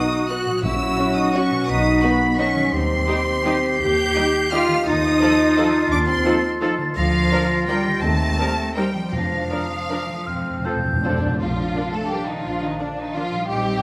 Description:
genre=classical, orchestral ballroom waltz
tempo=150-190 BPM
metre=3/4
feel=rubato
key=Bb major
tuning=A4 = 439 Hz
part: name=rich studio violin section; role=melody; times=0.0-13.2 s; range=D5 to G6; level=-30 LUFS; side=equal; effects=none
part: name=clear clarinet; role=second line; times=0.0-13.8 s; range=C4 to G4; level=-31 LUFS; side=equal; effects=none
part: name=mellow hollow concert flute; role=second line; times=0.0-13.8 s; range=Eb5 to C7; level=-29 LUFS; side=equal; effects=none
part: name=rich studio violin section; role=second line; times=0.0-13.8 s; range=D4 to D#5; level=-33 LUFS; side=equal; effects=none
part: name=warm studio viola section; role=accompaniment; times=0.0-13.2 s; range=F3 to Bb4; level=-32 LUFS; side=equal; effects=none
part: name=mellow French horn section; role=sustained chords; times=0.0-13.8 s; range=Eb3 to G4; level=-28 LUFS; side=equal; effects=none
part: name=mellow trombone section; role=sustained chords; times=0.0-11.2 s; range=Eb3 to Eb4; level=-30 LUFS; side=equal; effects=none
part: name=concert harp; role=arpeggios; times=0.0-13.8 s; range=A#2 to D5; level=-34 LUFS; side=equal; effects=none
part: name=warm trumpet section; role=stabs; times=0.0-11.2 s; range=F#4 to Bb4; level=-33 LUFS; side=equal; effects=none
part: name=rich studio cello section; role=bass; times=0.0-13.8 s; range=D3 to G4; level=-30 LUFS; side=equal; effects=none
part: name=rich studio double bass section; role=bass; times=0.6-13.8 s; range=A#1 to F2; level=-30 LUFS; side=equal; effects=none
part: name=timpani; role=percussion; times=0.6-1.1, 9.1-11.9 s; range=F2 to A#2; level=-30 LUFS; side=equal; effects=none
room=wet recital hall reverb, RT60 1.2 s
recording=none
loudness=-20 LUFS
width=mono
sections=0.0-11.4 A section; 11.4-13.8 B section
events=timpani fill 10.3-11.4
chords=0.0 B; 0.6 F#7/A#; 1.7 B; 2.7 Cm/Eb; 4.9 F7/Eb; 7.0 Bb/D; 8.0 Cm7/Eb; 9.1 Bb/F; 10.3 F; 11.4 Bb

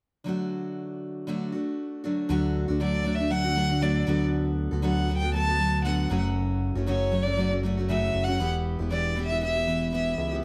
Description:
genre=acoustic pop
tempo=118 BPM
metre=4/4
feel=swing 55% on 16ths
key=D major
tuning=A4 = 440 Hz
part: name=picked steel-string acoustic guitar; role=accompaniment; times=0.2-10.4 s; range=F#2 to A4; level=-30 LUFS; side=equal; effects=none
part: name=fat analog bass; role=bass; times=2.3-10.4 s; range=E1 to D2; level=-30 LUFS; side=equal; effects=none
part: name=warm violin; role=melody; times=2.8-10.3 s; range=C#5 to A5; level=-31 LUFS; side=equal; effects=slapback echo, plate reverb
room=light reverb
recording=none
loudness=-27 LUFS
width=mono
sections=0.3-2.3 A section; 2.3-10.4 B section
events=none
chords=0.3 D; 4.1 Bm7/D; 6.1 F#m; 8.4 Em

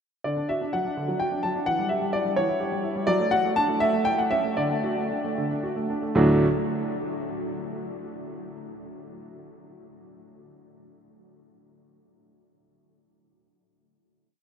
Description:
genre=classical-period piano sonatina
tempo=75-87 BPM (dotted quarters)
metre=6/8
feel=rubato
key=D major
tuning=A4 = 440 Hz
part: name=clear concert grand piano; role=solo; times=0.2-6.5 s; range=D2 to A5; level=-23 LUFS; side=equal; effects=none
room=wet huge ambient reverb, RT60 8.1 s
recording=in a vast, echoing space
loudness=-23 LUFS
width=side -7 dB against mid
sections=0.2-6.2 A section; 6.2-7.7 final chord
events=slowing down 2.4-6.2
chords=0.2 D; 1.7 C#dim/E; 3.1 D/F#; 3.8 A; 4.6 D

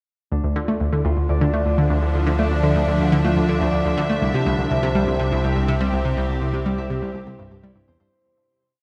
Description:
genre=ambient, sequencer-driven space music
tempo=123 BPM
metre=4/4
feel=straight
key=D minor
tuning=A4 = 440 Hz
part: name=evolving wavetable pad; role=sustained chords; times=1.3-8.1 s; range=C3 to E5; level=-26 LUFS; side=equal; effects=ensemble chorus, built-in reverb, shimmer reverb
part: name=Celtic harp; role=arpeggios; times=0.3-8.8 s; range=C4 to E5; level=-29 LUFS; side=equal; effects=low-pass filter, tape echo, shimmer reverb
part: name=analog pluck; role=riff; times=0.3-8.1 s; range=C2 to A3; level=-24 LUFS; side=equal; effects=chorus, tape echo, shimmer reverb
part: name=warm sub bass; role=bass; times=0.3-8.1 s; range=C2 to D2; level=-27 LUFS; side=equal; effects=none
room=wet concert hall reverb, RT60 1.8 s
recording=dark, warm production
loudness=-21 LUFS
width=mono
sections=0.3-8.1 A section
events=filter sweep on harp 0.3-8.1; fade-out 5.5-8.1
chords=0.3 Dmadd9; 4.2 C

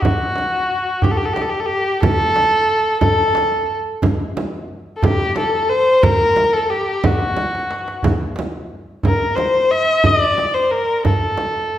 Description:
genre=Persian modal ensemble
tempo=60 BPM (dotted quarters)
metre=6/8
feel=straight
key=unclear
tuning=A4 = 440 Hz
part: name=warm kamancheh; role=melody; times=0.0-11.8 s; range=F#4 to E5-48c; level=-16 LUFS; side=left 1 dB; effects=none
part: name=frame drum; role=percussion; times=0.0-11.5 s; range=none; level=-22 LUFS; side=right 2 dB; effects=none
part: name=tombak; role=percussion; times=0.0-11.5 s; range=none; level=-22 LUFS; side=right 1 dB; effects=none
room=wet recital hall reverb, RT60 1.4 s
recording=heard from further back in the room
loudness=-15 LUFS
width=side -12 dB against mid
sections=0.0-11.8 A section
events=drum fill 7.4-8.0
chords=none

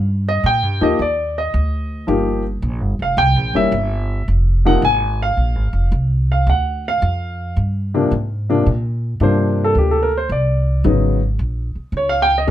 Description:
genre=jazz piano trio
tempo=110 BPM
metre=4/4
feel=swing 69% on 8ths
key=Bb major from 8.7 s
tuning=A4 = 441 Hz
part: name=upright bass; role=bass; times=0.0-12.5 s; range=F1 to Bb2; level=-18 LUFS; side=equal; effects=none
part: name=warm baby grand piano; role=melody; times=0.3-12.5 s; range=C3 to Ab5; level=-18 LUFS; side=left 1 dB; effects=none
room=light reverb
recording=none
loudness=-15 LUFS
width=side -12 dB against mid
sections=0.0-8.7 A section; 8.7-12.5 B section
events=grand piano solo 8.7-12.5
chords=0.0 Ebmaj7; 2.1 F9sus4; 3.2 C7; 4.3 Fm; 6.5 Bb7 (rootless); 8.7 Bb69; 10.8 Abm11; 11.9 Db

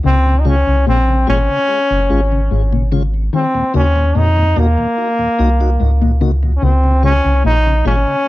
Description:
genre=reggae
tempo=73 BPM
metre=4/4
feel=straight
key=unclear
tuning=A4 = 440 Hz
part: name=mellow electric guitar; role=arpeggios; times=0.0-8.0 s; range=Ab2 to Eb3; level=-20 LUFS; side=left 4 dB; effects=spring reverb
part: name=bright trombone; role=melody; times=0.1-8.3 s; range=Bb3 to Eb4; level=-16 LUFS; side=left 1 dB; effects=tape echo
part: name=soft dub sub bass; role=bass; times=0.1-8.1 s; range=Gb1 to F2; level=-14 LUFS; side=equal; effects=none
part: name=mellow tonewheel organ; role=accompaniment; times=0.3-8.2 s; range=Eb2 to Gb4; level=-23 LUFS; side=left 2 dB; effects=slow rotary speaker, tape echo
room=light reverb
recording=none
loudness=-12 LUFS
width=side -17 dB against mid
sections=0.0-8.3 A section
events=none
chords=0.0 Db; 3.3 Ebm; 6.6 Db

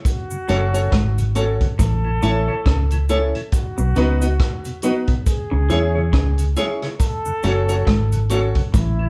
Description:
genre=roots reggae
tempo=69 BPM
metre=4/4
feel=swing 58% on 16ths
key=unclear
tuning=A4 = 444 Hz
part: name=vintage drum kit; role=drums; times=0.0-9.0 s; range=hi-hat, kick drum, rim click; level=-24 LUFS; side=equal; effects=vintage 12-bit sampler grit
part: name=brilliant trombone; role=second line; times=0.1-9.1 s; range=E4 to A4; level=-30 LUFS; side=equal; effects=none
part: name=cabasa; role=percussion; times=0.1-9.0 s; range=none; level=-40 LUFS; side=equal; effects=none
part: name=tonewheel organ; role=accompaniment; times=0.3-9.1 s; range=F#2 to F#4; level=-30 LUFS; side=equal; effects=overdrive, stopped rotary speaker
part: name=mellow electric guitar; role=accompaniment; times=0.5-8.4 s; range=E4 to D#5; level=-28 LUFS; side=equal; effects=none
part: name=electric guitar through a small old amp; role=riff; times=0.5-9.0 s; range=F#2 to E3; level=-28 LUFS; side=equal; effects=spring reverb
part: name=warm upright piano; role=stabs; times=0.5-8.6 s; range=B3 to C#5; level=-26 LUFS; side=equal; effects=none
part: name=vintage muted fingered electric bass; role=bass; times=0.5-9.1 s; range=F#1 to E2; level=-22 LUFS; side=equal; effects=none
room=moderate studio reverb, RT60 0.8 s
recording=band playing live in one room, cassette tape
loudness=-19 LUFS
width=mono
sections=0.0-9.1 A section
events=none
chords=0.1 F#m; 1.8 A; 3.5 B; 5.3 C#m; 7.0 F#m

